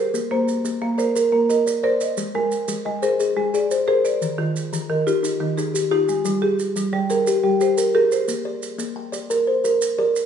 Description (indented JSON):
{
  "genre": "southern african traditional, mbira-style interlocking cycle",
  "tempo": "118 BPM (dotted quarters)",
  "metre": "12/8",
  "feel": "straight",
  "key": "Bb mixolydian",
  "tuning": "A4 = 440 Hz",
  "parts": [
    { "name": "buzzing marimba with medium hard mallets", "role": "arpeggios", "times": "0.0-8.6 s", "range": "Eb3 to Eb5", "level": "-25 LUFS", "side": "right 4 dB", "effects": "none" },
    { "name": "kalimba", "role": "arpeggios", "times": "0.0-10.3 s", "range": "Eb3 to G5", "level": "-20 LUFS", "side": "left 1 dB", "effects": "none" },
    { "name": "maracas", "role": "percussion", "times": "0.1-10.3 s", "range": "none", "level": "-33 LUFS", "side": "right 7 dB", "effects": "none" }
  ],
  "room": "wet recital hall reverb, RT60 1.4 s",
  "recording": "recorded in a church or concert hall, nothing above 10.9 kHz",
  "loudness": "-18 LUFS",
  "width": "side -8 dB against mid",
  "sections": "0.0-8.3 A section; 8.3-10.3 B section",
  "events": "none",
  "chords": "0.1 Bb; 2.2 Ab; 4.2 Eb; 6.3 Gm; 8.3 Bb",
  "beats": "| 0.14 0.65 1.16 1.67 | 2.18 2.69 3.20 3.71 | 4.21 4.72 5.23 5.74 | 6.25 6.76 7.27 7.78 | 8.29 8.80 9.31 9.82"
}